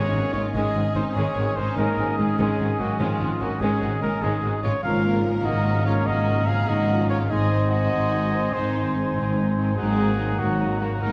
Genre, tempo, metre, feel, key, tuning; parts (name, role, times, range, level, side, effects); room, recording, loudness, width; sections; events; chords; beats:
cinematic; 97 BPM (dotted quarters); 12/8; straight; A4 = 440 Hz
warm symphonic violin section; melody; 0.0-11.1 s; Ab3 to Bb4; -37 LUFS; equal
bright clarinet; second line; 0.0-11.1 s; Db4 to Eb4; -39 LUFS; equal
dark symphonic violin section; second line; 0.0-11.1 s; Ab3 to Gb4; -37 LUFS; equal
flute section; second line; 0.0-11.1 s; Ab5 to C6; -37 LUFS; equal
warm oboe; second line; 0.0-11.1 s; Eb5 to Ab5; -36 LUFS; equal
rich symphonic viola section; accompaniment; 0.0-11.1 s; Db3 to C4; -35 LUFS; equal
mellow trombone section; sustained chords; 0.0-11.1 s; Db3 to C4; -35 LUFS; equal
warm French horn section; sustained chords; 0.0-11.1 s; F3 to F4; -34 LUFS; equal
warm trumpet; stabs; 0.0-11.1 s; F4 to F5; -30 LUFS; equal
timpani; percussion; 0.0-0.5 s; Ab2; -34 LUFS; equal
warm symphonic cello section; bass; 0.1-11.1 s; Ab2; -30 LUFS; equal
warm symphonic double bass section; bass; 0.1-11.1 s; Ab1; -29 LUFS; equal
wet scoring stage reverb, RT60 1.7 s; dark, warm production; -23 LUFS; mono
0.0-11.1 A section
0.0 Dbsus2/Ab; 4.8 Bbm/Ab; 7.3 Ab; 9.8 Ebm/Ab
0.54 1.16 1.77 | 2.38 3.00 3.61 4.22 | 4.84 5.46 6.07 6.69 | 7.30 7.92 8.54 9.16 | 9.77 10.39 11.01